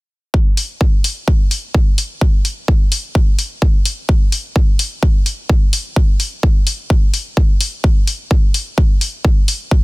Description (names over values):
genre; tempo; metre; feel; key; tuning
EDM, festival progressive house; 128 BPM; 4/4; straight; none; none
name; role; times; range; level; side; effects
electronic kick drum; drums; 0.3-9.8 s; none; -12 LUFS; equal; none
electronic hi-hat; drums; 0.6-9.6 s; none; -21 LUFS; left 2 dB; none
room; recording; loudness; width
little or no reverb; dense, heavily limited modern master; -13 LUFS; side -23 dB against mid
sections
0.3-9.8 A section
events
none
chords
none